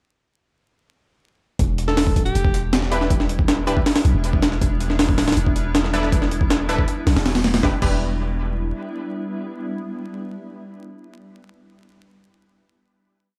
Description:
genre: drum and bass, jungle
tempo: 159 BPM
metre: 4/4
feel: straight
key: E minor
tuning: A4 = 439 Hz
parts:
  - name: granular cloud pad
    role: sustained chords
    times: 3.2-10.6 s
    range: G3 to E4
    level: -33 LUFS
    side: equal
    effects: built-in reverb, vintage 12-bit sampler grit
  - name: long sustained 808-style bass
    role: bass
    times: 1.6-8.7 s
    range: D1 to B1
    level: -25 LUFS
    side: equal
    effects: none
  - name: jungle sampler-style drum kit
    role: drums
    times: 1.6-7.9 s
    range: crash cymbal, hi-hat, kick drum, snare drum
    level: -22 LUFS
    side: equal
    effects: overdrive
  - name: clear alto saxophone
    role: melody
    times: 1.9-2.6 s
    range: G4 to A4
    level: -30 LUFS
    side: equal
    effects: vintage 12-bit sampler grit, dub echo
  - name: orchestra-hit-like synth stab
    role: stabs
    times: 2.9-10.8 s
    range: D4 to B4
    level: -30 LUFS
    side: equal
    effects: built-in reverb, dub echo
room: little or no reverb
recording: vinyl crackle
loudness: -20 LUFS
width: mono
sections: 1.6-7.6 drop; 7.6-10.7 final chord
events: drop 1.6-7.6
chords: 1.6 Em7; 4.6 G6; 7.6 Em7

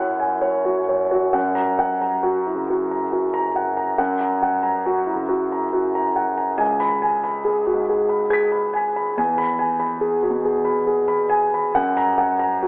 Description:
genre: neoclassical minimalist piano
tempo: 69 BPM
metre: 3/4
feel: rubato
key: unclear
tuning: A4 = 442 Hz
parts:
  - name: warm concert grand piano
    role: solo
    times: 0.0-12.7 s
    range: C#2 to B6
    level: -18 LUFS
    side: equal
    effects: tape echo
room: wet spring reverb, RT60 1.2 s, small room ambience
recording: echo-heavy mix, telephone sound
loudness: -18 LUFS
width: side -30 dB against mid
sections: 0.0-1.4 A section; 1.4-12.7 B section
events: none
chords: 0.0 F#sus4; 1.4 F#; 6.6 C#5; 9.2 Eadd9; 11.8 F#

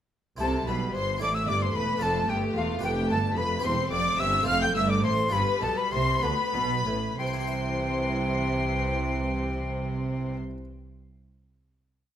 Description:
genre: classical, baroque-style concerto movement with solo episodes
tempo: 61-75 BPM (dotted quarters)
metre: 6/8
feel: straight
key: C major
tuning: A4 = 440 Hz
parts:
  - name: bright silver concert flute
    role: melody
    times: 0.4-10.4 s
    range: F5 to G6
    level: -30 LUFS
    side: left 2 dB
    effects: none
  - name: rich studio violin section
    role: melody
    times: 0.4-10.4 s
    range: F5 to G6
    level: -34 LUFS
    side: left 4 dB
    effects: none
  - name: rich chamber violin section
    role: second line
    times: 0.4-10.4 s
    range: F4 to G5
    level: -33 LUFS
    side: left 2 dB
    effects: none
  - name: harpsichord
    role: accompaniment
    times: 0.4-10.6 s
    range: E2 to E5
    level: -37 LUFS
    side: right 1 dB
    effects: none
  - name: rich chamber viola section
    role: accompaniment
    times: 0.4-10.4 s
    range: E3 to C4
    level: -34 LUFS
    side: right 1 dB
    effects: none
  - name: rich chamber cello section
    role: bass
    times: 0.4-10.4 s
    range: E2 to D3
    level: -31 LUFS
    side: right 2 dB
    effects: none
  - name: warm chamber double bass section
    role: bass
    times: 0.4-10.4 s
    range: E1 to D2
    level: -32 LUFS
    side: right 2 dB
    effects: none
room: light reverb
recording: close, detailed microphones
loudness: -24 LUFS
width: side -10 dB against mid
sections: 0.4-7.2 ritornello; 7.2-11.1 final chord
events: slowing down 2.8-7.2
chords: 0.4 C; 1.2 Am; 2.0 Dm/F; 2.8 G7/F; 3.6 C/E; 4.5 F; 5.3 G7; 7.2 C

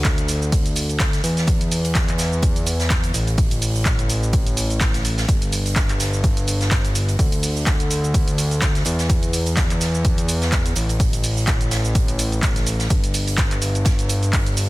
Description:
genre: piano house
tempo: 126 BPM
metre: 4/4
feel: swing 55% on 16ths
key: unclear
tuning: A4 = 442 Hz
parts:
  - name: fat analog bass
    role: bass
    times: 0.0-14.7 s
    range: G1 to E2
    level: -21 LUFS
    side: equal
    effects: sidechain pumping
  - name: electronic kick drum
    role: drums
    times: 0.0-14.4 s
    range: none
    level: -20 LUFS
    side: equal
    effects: none
  - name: punchy analog drum machine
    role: drums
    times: 0.0-14.7 s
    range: handclaps, hi-hat, shaker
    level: -25 LUFS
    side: right 1 dB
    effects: none
  - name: raw garage drum kit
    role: drums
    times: 0.1-14.7 s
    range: hi-hat, snare drum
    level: -31 LUFS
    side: right 1 dB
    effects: sidechain pumping on hats, high-pass filter on hats, high-pass filter on snare, high-pass filter on room
room: small room ambience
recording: dense, heavily limited modern master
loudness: -17 LUFS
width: side -19 dB against mid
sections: 0.0-14.7 A section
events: none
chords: none

